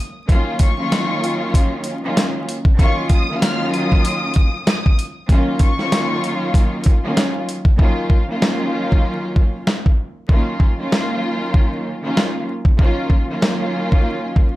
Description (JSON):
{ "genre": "hip hop, boom-bap hip-hop", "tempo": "96 BPM", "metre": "4/4", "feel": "swing 58% on 16ths", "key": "Eb minor", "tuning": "A4 = 438 Hz", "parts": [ { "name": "warm studio string section", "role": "accompaniment", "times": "0.3-14.6 s", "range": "Eb3 to F4", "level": "-21 LUFS", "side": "equal", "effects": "cassette tape, high-pass filter, low-pass filter" }, { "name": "dusty soul sampler-style drum kit", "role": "drums", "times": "0.3-14.5 s", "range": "hi-hat, kick drum, snare drum", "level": "-15 LUFS", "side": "equal", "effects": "none" }, { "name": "rich studio violin section", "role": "melody", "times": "0.6-6.7 s", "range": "Db6 to F6", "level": "-26 LUFS", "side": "left 3 dB", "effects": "high-pass filter, low-pass filter, digital delay" } ], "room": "little or no reverb", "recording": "vinyl crackle", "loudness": "-15 LUFS", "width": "side -17 dB against mid", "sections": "0.0-7.8 A section; 7.8-14.6 B section", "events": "hi-hats muted 7.8-14.6", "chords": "0.0 Ebm9" }